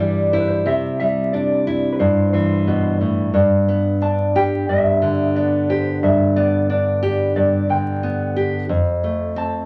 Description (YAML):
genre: acoustic folk duo or small band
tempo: 90 BPM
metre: 4/4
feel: straight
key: unclear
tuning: A4 = 441 Hz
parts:
  - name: mellow electric guitar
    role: melody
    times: 0.0-9.7 s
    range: B4 to A5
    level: -25 LUFS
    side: equal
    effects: tremolo
  - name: nylon-string guitar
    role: accompaniment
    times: 0.0-9.7 s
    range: F2 to G4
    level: -19 LUFS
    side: equal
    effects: none
room: wet club reverb, RT60 0.5 s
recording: vinyl crackle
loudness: -18 LUFS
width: mono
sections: 0.0-9.7 A section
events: none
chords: 0.0 Cadd9; 3.3 G; 8.7 F